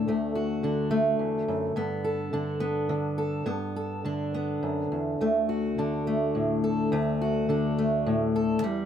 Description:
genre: folk, solo fingerstyle acoustic guitar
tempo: 106 BPM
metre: 3/4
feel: rubato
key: D major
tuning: A4 = 440 Hz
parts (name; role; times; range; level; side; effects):
- fingerpicked steel-string acoustic guitar; solo; 0.0-8.9 s; D2 to A4; -25 LUFS; equal; none
room: light reverb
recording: close, detailed microphones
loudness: -25 LUFS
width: side -9 dB against mid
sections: 0.0-8.9 A section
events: none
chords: 0.0 D; 1.8 Gadd9; 5.2 D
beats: | 0.08 0.65 1.21 | 1.77 2.33 2.89 | 3.46 4.04 4.63 | 5.21 5.78 6.36 | 6.92 7.49 8.06 | 8.62

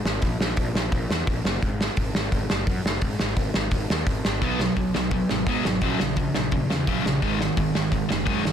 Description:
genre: punk rock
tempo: 172 BPM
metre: 4/4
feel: straight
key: unclear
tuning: A4 = 440 Hz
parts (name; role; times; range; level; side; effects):
- fuzz picked electric bass; bass; 0.0-8.5 s; F#1 to G#2; -28 LUFS; left 1 dB; overdrive
- loose indie drum kit; drums; 0.1-8.5 s; hi-hat, kick drum, snare drum; -25 LUFS; equal; none
- biting overdriven guitar; riff; 4.4-8.5 s; F#2 to B3; -27 LUFS; left 11 dB; none
- overdriven semi-hollow guitar; riff; 4.4-8.5 s; F#2 to B3; -26 LUFS; right 10 dB; none
room: little or no reverb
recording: dense, heavily limited modern master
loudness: -22 LUFS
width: side -8 dB against mid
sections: 0.0-8.5 A section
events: none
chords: 0.2 N.C.; 1.6 F#sus2; 3.0 G#5; 4.4 B5; 5.8 F#/A#; 7.2 G#5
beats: | 0.23 0.58 0.93 1.28 | 1.63 1.98 2.33 2.67 | 3.02 3.37 3.72 4.07 | 4.42 4.77 5.12 5.47 | 5.82 6.17 6.52 6.87 | 7.21 7.56 7.91 8.26

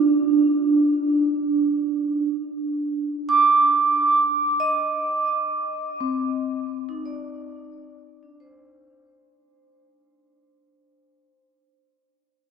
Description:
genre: ambient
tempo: free time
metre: none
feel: none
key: unclear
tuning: A4 = 440 Hz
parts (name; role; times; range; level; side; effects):
- vibraphone with hard mallets; solo; 0.0-11.4 s; C4 to D6; -19 LUFS; right 3 dB; diffuse ambient delay
room: wet huge ambient reverb, RT60 7.0 s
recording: dark, warm production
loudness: -19 LUFS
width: side -6 dB against mid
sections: 0.0-9.1 A section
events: fade-out 2.0-9.1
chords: 0.0 N.C.; 3.8 Cmadd9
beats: free time

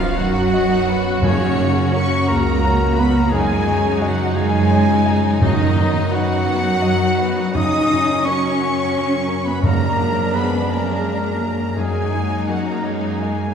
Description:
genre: cinematic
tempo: 57 BPM (dotted quarters)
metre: 6/8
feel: rubato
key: F# major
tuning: A4 = 439 Hz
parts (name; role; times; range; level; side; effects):
- warm symphonic violin section; melody; 0.0-13.5 s; C#4 to F#4; -27 LUFS; left 2 dB; none
- clear symphonic violin section; second line; 0.0-13.5 s; C#5 to D#6; -25 LUFS; equal; none
- concert flute; second line; 0.0-13.5 s; C#5 to D#6; -28 LUFS; left 1 dB; none
- mellow clarinet; second line; 0.0-13.5 s; C#4 to D#5; -27 LUFS; left 3 dB; none
- warm oboe; second line; 0.0-13.5 s; C#4 to D#5; -31 LUFS; right 1 dB; none
- clear grand piano; accompaniment; 0.0-13.5 s; F#2 to G#5; -28 LUFS; left 1 dB; none
- rich symphonic viola section; accompaniment; 0.0-13.5 s; C#3 to D#4; -30 LUFS; right 1 dB; none
- warm French horn section; sustained chords; 0.0-13.5 s; C#3 to D#4; -28 LUFS; left 3 dB; none
- concert harp; arpeggios; 0.0-13.5 s; F#2 to G#4; -28 LUFS; left 5 dB; none
- rich symphonic cello section; bass; 0.0-13.5 s; C#3 to D#4; -23 LUFS; right 1 dB; none
- timpani; percussion; 0.0-10.7 s; F#2; -24 LUFS; right 2 dB; none
- rich symphonic double bass section; bass; 0.1-13.5 s; C#2 to F#2; -22 LUFS; right 4 dB; none
room: wet scoring stage reverb, RT60 1.6 s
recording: heard from further back in the room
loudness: -15 LUFS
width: side -7 dB against mid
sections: 0.0-13.5 A section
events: none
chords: 0.0 B/F#; 1.2 F#; 3.3 C#add9/F#; 5.4 B/F#; 7.5 F#; 9.6 A#7/F#; 11.8 D#m/F#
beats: 0.14 | 1.22 2.29 | 3.33 4.37 | 5.41 6.45 | 7.54 8.59 | 9.63 10.70 | 11.76 12.85

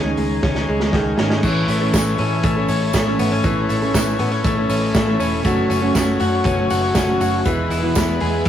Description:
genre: jangly indie pop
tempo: 120 BPM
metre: 4/4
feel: straight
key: unclear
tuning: A4 = 440 Hz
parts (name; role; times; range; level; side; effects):
- combo organ; accompaniment; 0.0-8.5 s; B3 to B5; -26 LUFS; left 4 dB; none
- fingerpicked plugged-in steel-string acoustic guitar; accompaniment; 0.0-8.5 s; E2 to A4; -23 LUFS; right 3 dB; none
- direct-recorded clean electric guitar; arpeggios; 0.0-8.5 s; D#3 to G#4; -21 LUFS; left 2 dB; none
- vintage muted fingered electric bass; bass; 0.0-8.5 s; E1 to A2; -25 LUFS; equal; none
- vintage drum kit; drums; 0.2-8.5 s; crash cymbal, hi-hat, kick drum, ride cymbal, snare drum; -21 LUFS; right 1 dB; none
- tambourine; percussion; 1.4-8.5 s; none; -35 LUFS; right 4 dB; none
room: moderate stone room reverb, RT60 1.3 s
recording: rough rehearsal-room recording, warm saturation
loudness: -16 LUFS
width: side -10 dB against mid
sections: 0.0-1.4 A section; 1.4-8.5 B section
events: drum fill 0.4-1.4; transistor combo organ fill 4.4-5.4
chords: 0.0 C#sus2; 1.4 A; 5.4 F#m; 7.5 E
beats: 0.43 0.93 | 1.44 1.94 2.44 2.94 | 3.44 3.94 4.44 4.95 | 5.45 5.95 6.45 6.95 | 7.46 7.96 8.46

